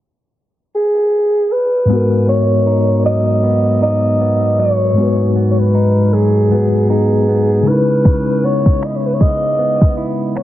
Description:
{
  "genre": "contemporary R&B",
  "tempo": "78 BPM",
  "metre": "4/4",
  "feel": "swing 58% on 16ths",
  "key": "G# minor",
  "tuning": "A4 = 440 Hz",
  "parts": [
    { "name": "growling alto saxophone", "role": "melody", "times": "0.8-10.4 s", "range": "G#4 to D#5", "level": "-16 LUFS", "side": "right 1 dB", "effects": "none" },
    { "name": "mellow tine electric piano", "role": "accompaniment", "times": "1.9-10.4 s", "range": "G#2 to B4", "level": "-15 LUFS", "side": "left 2 dB", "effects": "medium stereo tremolo" },
    { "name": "direct-recorded clean electric guitar", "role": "arpeggios", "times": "1.9-10.4 s", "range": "G#2 to E4", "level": "-21 LUFS", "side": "right 4 dB", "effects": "spring reverb" },
    { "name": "smooth R&B drum kit", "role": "drums", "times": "8.1-10.4 s", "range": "finger snaps, kick drum", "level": "-12 LUFS", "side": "equal", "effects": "none" }
  ],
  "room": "digital ambience",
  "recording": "heavily compressed radio sound, low-pass filter",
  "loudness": "-12 LUFS",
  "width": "side -13 dB against mid",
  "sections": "0.0-1.9 A section; 1.9-10.4 B section",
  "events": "none",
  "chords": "0.0 N.C.; 1.9 G#m7; 7.7 C#m7"
}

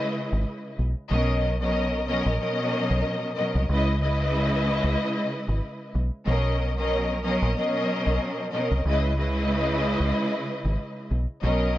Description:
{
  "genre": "hip hop, boom-bap hip-hop",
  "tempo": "93 BPM",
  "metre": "4/4",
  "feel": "swing 56% on 16ths",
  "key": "unclear",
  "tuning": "A4 = 440 Hz",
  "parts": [
    { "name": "warm studio string section", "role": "accompaniment", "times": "0.0-11.8 s", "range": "B2 to D#5", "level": "-25 LUFS", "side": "equal", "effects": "cassette tape, high-pass filter, low-pass filter" },
    { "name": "deep dub fingered electric bass", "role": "bass", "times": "0.3-11.8 s", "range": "G#1 to C#2", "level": "-26 LUFS", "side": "equal", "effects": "none" }
  ],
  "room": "light reverb",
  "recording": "none",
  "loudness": "-23 LUFS",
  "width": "side -14 dB against mid",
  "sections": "0.0-11.8 A section",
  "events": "none",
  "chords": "0.0 C#m7; 1.1 Bmaj9; 3.7 C#m7; 6.3 Bmaj9; 8.9 C#m7"
}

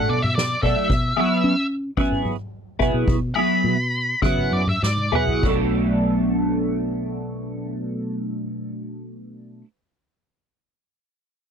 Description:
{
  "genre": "psychedelic rock",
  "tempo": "95-113 BPM",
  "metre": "4/4",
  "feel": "straight",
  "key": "B dorian",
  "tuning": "A4 = 440 Hz",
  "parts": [
    { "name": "octave-fuzz lead guitar", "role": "melody", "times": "0.0-5.4 s", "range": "D5 to B5", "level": "-24 LUFS", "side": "left 1 dB", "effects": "distortion, slapback echo" },
    { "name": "twelve-string electric guitar", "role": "riff", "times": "0.0-9.7 s", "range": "B2 to A4", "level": "-22 LUFS", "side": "equal", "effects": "flanger, double-tracked left and right" },
    { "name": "fingered electric bass", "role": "bass", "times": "0.0-9.6 s", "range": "B1 to C#4", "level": "-25 LUFS", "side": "equal", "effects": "none" },
    { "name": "soft-mallet drum kit", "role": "drums", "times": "0.2-5.6 s", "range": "crash cymbal, kick drum, snare drum, toms", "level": "-26 LUFS", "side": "equal", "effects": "none" }
  ],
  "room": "little or no reverb",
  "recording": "dry, close 1970s-style studio recording",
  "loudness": "-19 LUFS",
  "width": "side -7 dB against mid",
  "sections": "0.0-5.4 A section; 5.4-10.5 B section",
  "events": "lead electric guitar solo 0.0-5.4; slowing down 0.9-5.4; drum fill 4.8-5.4",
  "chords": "0.0 Bm7; 0.9 Eadd9/B; 5.4 Bm7"
}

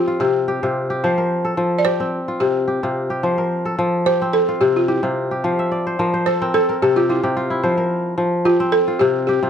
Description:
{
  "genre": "west african traditional, West African string and xylophone music",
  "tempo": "109 BPM",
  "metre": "4/4",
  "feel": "swing 53% on 16ths",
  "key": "F major",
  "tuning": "A4 = 440 Hz",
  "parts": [
    { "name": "balafon", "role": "melody", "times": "0.0-9.5 s", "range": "E4 to D5", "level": "-18 LUFS", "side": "equal", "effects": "none" },
    { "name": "kora", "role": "arpeggios", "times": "0.0-9.5 s", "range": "C3 to F5", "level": "-19 LUFS", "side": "left 1 dB", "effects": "none" }
  ],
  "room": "light reverb",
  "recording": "close, detailed microphones",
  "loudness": "-16 LUFS",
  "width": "side -8 dB against mid",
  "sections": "0.0-9.5 A section",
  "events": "kora fill 5.4-7.6",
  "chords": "0.0 C5; 1.0 F; 2.1 C5; 3.2 F; 4.3 C5; 5.4 F5; 6.5 N.C.; 7.6 F5; 8.7 C5"
}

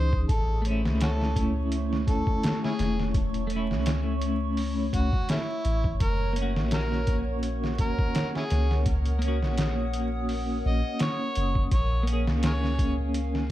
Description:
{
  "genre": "trip hop",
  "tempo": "84 BPM",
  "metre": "4/4",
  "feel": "swing 55% on 16ths",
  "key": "unclear",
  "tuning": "A4 = 440 Hz",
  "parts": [
    { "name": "overdriven harmonica", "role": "melody", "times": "0.0-12.9 s", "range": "A3 to D#5", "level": "-34 LUFS", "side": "equal", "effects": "tape echo" },
    { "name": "twelve-string electric guitar", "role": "accompaniment", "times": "0.0-13.5 s", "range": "E3 to G#4", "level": "-31 LUFS", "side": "left 1 dB", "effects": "tremolo, tape echo" },
    { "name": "warbly tape-like pad", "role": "sustained chords", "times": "0.0-13.5 s", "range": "A3 to D#6", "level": "-35 LUFS", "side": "right 2 dB", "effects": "chorus, built-in reverb" },
    { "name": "soft 808-style bass", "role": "bass", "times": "0.0-13.5 s", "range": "E1 to C#2", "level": "-27 LUFS", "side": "equal", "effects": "tube saturation" },
    { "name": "trip hop sampler-style drum kit", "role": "drums", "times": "0.1-13.5 s", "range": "hi-hat, kick drum, snare drum", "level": "-28 LUFS", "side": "equal", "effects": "overdrive" }
  ],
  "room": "digital ambience",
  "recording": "dark, warm production, vinyl crackle",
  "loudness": "-24 LUFS",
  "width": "side -14 dB against mid",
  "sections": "0.0-13.5 A section",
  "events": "none",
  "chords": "0.3 A; 6.0 F#; 11.7 A#m7"
}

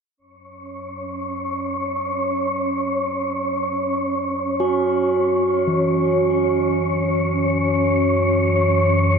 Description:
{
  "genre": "dark ambient drone",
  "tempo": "free time",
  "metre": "none",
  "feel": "none",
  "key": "unclear",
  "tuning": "A4 = 438 Hz",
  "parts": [
    { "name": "deep rumbling drone", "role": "drone", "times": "0.4-9.2 s", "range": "F#2 to F#3", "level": "-27 LUFS", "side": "left 1 dB", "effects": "built-in reverb, lush chorus" },
    { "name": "wind-like tuned noise texture", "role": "texture", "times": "0.6-9.2 s", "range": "C#4 to C#5", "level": "-20 LUFS", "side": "equal", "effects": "built-in reverb" },
    { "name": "quartz singing bowl", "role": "arpeggios", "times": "4.6-9.2 s", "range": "E3 to F#4", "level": "-20 LUFS", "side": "right 3 dB", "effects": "ping-pong delay" }
  ],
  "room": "wet huge ambient reverb, RT60 8.0 s",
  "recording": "none",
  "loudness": "-18 LUFS",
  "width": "side -6 dB against mid",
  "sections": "0.2-9.2 A section",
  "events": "filter sweep on synth drone 0.2-9.2",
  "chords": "0.2 F#5"
}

